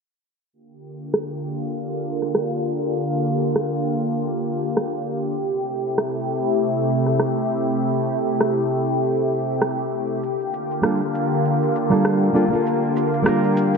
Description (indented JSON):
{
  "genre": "sunset chillout",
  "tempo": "99 BPM",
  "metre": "4/4",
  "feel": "swing 57% on 16ths",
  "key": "G dorian",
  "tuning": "A4 = 439 Hz",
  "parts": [
    { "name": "lush unison pad", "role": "sustained chords", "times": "0.9-13.8 s", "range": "C3 to G4", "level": "-21 LUFS", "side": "equal", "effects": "chorus, phaser" },
    { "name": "electronic rim click and shaker", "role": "drums", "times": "1.1-13.8 s", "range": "none", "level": "-25 LUFS", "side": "equal", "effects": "overdrive" },
    { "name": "nylon-string guitar", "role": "accompaniment", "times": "10.8-13.8 s", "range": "G3 to Bb4", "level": "-19 LUFS", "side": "right 1 dB", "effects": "auto-pan, tape echo" }
  ],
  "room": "moderate scoring stage reverb, RT60 1.6 s, digital ambience",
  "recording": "low-pass filter",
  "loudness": "-19 LUFS",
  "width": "side -5 dB against mid",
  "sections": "0.5-13.8 A section",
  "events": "filter sweep 0.5-13.8",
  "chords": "0.5 Gm7; 5.4 Am7; 10.2 Gm7",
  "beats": "| 0.53 1.14 1.74 2.35 | 2.95 3.56 4.17 4.77 | 5.38 5.98 6.59 7.20 | 7.80 8.41 9.01 9.62 | 10.23 10.83 11.44 12.04 | 12.65 13.26"
}